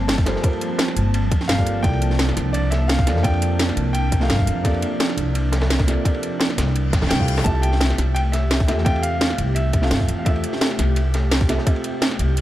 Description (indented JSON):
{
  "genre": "liquid drum and bass",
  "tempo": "171 BPM",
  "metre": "4/4",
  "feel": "swing 54% on 16ths",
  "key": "G dorian",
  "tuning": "A4 = 439 Hz",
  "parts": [
    { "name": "felt-muted upright piano", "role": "accompaniment", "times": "0.0-12.4 s", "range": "C3 to F5", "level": "-28 LUFS", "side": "right 1 dB", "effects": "digital delay" },
    { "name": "airy breathy pad", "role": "sustained chords", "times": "0.0-12.4 s", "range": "F3 to A5", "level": "-28 LUFS", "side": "right 1 dB", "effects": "chorus, sidechain pumping" },
    { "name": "upright bass", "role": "bass", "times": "0.0-12.4 s", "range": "G1 to F2", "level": "-20 LUFS", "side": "equal", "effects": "none" },
    { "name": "crunchy breakbeat drum kit", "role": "drums", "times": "0.1-12.4 s", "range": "ride cymbal, snare drum", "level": "-30 LUFS", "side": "equal", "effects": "high-pass filter on cymbals, high-pass filter on snare, high-pass filter on room" },
    { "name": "drum and bass drum kit", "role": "drums", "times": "0.1-12.4 s", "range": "hi-hat, snare drum", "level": "-23 LUFS", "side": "equal", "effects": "overdrive" },
    { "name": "electronic kick drum", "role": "drums", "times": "0.2-11.7 s", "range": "none", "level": "-20 LUFS", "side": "equal", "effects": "overdrive" },
    { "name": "bright grand piano", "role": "melody", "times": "1.5-4.8, 7.1-11.3 s", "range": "D5 to A5", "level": "-28 LUFS", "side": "left 1 dB", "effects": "dub echo" },
    { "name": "reverse cymbal", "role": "sound effects", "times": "6.9-7.5 s", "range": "none", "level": "-34 LUFS", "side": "left 4 dB", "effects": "none" }
  ],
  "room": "small room ambience",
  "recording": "dark, warm production",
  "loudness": "-17 LUFS",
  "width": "side -14 dB against mid",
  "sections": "0.0-12.4 A section",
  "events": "reverse cymbal 6.9-7.5",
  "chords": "0.0 Gm11; 7.3 Fmaj9",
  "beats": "0.09 | 0.44 0.79 1.14 1.49 | 1.84 2.19 2.54 2.89 | 3.25 3.60 3.95 4.30 | 4.65 5.00 5.35 5.70 | 6.05 6.40 6.75 7.11 | 7.46 7.81 8.16 8.51 | 8.86 9.21 9.56 9.91 | 10.26 10.61 10.96 11.31 | 11.67 12.02 12.37"
}